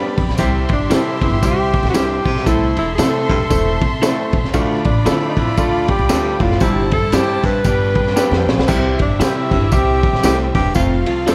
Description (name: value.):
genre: uptempo 1960s-style soul.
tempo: 116 BPM.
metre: 4/4.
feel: swing 60% on 8ths.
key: C major.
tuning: A4 = 440 Hz.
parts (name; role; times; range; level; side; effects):
rich studio violin section; second line; 0.0-11.3 s; C4 to C6; -28 LUFS; equal; slapback echo.
bright grand piano; accompaniment; 0.0-11.3 s; F3 to A4; -25 LUFS; equal; none.
upright bass; bass; 0.2-11.3 s; E1 to D3; -23 LUFS; equal; none.
crunchy breakbeat drum kit; drums; 0.2-11.3 s; crash cymbal, hi-hat, kick drum, ride cymbal, snare drum; -21 LUFS; equal; none.
warm baritone saxophone; riff; 0.4-11.0 s; D2 to C3; -26 LUFS; equal; none.
tambourine; percussion; 0.4-11.3 s; none; -34 LUFS; equal; none.
breathy tenor saxophone; melody; 0.7-11.3 s; D4 to B4; -22 LUFS; equal; none.
electric guitar through a small old amp; stabs; 0.9-11.3 s; D4 to D5; -26 LUFS; equal; none.
room: light reverb.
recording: vinyl crackle.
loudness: -16 LUFS.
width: mono.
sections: 0.0-8.7 A section; 8.7-11.3 A section.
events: drum fill 8.2-8.7.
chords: 0.4 C; 2.5 Am; 4.5 Dm; 6.6 C/G; 7.7 G; 8.7 C; 10.8 F.